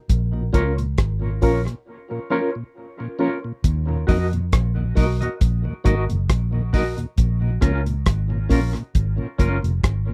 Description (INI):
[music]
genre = dub reggae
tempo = 68 BPM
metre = 4/4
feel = swing 55% on 16ths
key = Eb minor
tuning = A4 = 440 Hz
[part]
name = vintage muted fingered electric bass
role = bass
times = 0.1-10.1 s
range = F1 to F2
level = -24 LUFS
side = equal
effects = none
[part]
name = cloth-damped thuddy drum kit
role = drums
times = 0.1-10.1 s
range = hi-hat, kick drum, rim click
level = -22 LUFS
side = equal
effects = none
[part]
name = mellow tonewheel organ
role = accompaniment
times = 0.3-10.1 s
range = Eb2 to Eb4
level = -30 LUFS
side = equal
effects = slow rotary speaker, dub echo
[part]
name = semi-hollow electric guitar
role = accompaniment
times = 0.5-9.6 s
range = Db4 to Eb5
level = -31 LUFS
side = equal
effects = tremolo, dub echo
[part]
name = bright reed electric piano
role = stabs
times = 0.5-3.4 s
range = Db4 to Bb4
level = -28 LUFS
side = equal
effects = fast tremolo, dub echo
[sound]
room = little or no reverb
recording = dry, close 1970s-style studio recording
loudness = -21 LUFS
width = mono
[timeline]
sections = 0.0-3.6 A section; 3.6-10.1 A section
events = break 1.9-3.6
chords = 0.1 Bbm; 3.6 Ebm; 7.2 Bbm